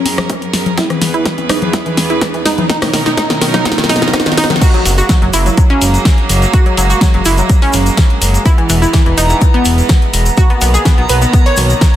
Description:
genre	progressive house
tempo	125 BPM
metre	4/4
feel	straight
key	F# mixolydian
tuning	A4 = 441 Hz
part	bright chamber string section	sustained chords	0.0-12.0 s	E2 to B4	-20 LUFS	right 3 dB	sidechain pumping
part	analog pluck	arpeggios	0.0-12.0 s	D#3 to C#5	-16 LUFS	equal	chorus, sidechain pumping, dub echo
part	riser	sound effects	0.4-4.6 s	none	-26 LUFS	right 1 dB	none
part	deep house drum kit	drums	0.1-11.9 s	crash cymbal, hi-hat, snare drum	-17 LUFS	equal	sidechain pumping on hats, sidechain pumping on cymbals
part	electronic congas and rim click	percussion	0.1-4.6 s	none	-21 LUFS	left 6 dB	sidechain pumping on perc, soft clipping on snare, sidechain pumping on snare
part	electronic kick drum	drums	0.3-11.9 s	none	-10 LUFS	equal	overdrive, high-pass filter on kick, high-pass filter on room
part	egg shaker	percussion	4.6-11.9 s	none	-22 LUFS	left 2 dB	none
part	backwards swelling texture	texture	5.4-12.0 s	A#5	-24 LUFS	equal	built-in reverb, sidechain pumping
part	fat analog bass	bass	4.9-11.7 s	E1 to B1	-13 LUFS	equal	sidechain pumping
room	light reverb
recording	dense, heavily limited modern master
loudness	-9 LUFS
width	side -12 dB against mid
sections	0.0-4.6 A section; 4.6-12.0 B section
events	build-up 0.0-4.6; drum fill 0.0-4.6; filter sweep on synth pluck 0.0-4.6; drop 4.6-12.0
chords	0.0 F#add9; 0.8 E; 2.7 Bmaj7; 4.6 F#add9; 8.5 E; 10.4 Bmaj7

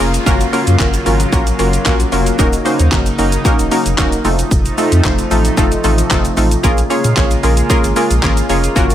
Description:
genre	dance-pop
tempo	113 BPM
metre	4/4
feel	straight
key	Bb minor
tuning	A4 = 439 Hz
part	glassy wavetable pluck	accompaniment	0.0-8.9 s	A3 to Db5	-16 LUFS	equal	chorus
part	chorused pulse-width pad	sustained chords	0.0-8.9 s	C3 to F4	-21 LUFS	equal	sidechain pumping
part	warm sub bass	bass	0.0-8.9 s	Eb1 to Bb2	-16 LUFS	equal	sidechain pumping
part	pop drum kit	drums	0.0-8.9 s	handclaps, hi-hat, kick drum, shaker, snare drum	-17 LUFS	equal	none
part	downlifter	sound effects	0.0-2.4 s	none	-30 LUFS	right 1 dB	none
part	tube shaker	percussion	0.1-8.9 s	none	-31 LUFS	right 7 dB	none
room	little or no reverb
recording	none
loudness	-11 LUFS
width	side -11 dB against mid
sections	0.0-8.9 A section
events	none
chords	0.3 Gbmaj7; 2.4 Ebm7; 4.2 F7; 6.6 Bbm7

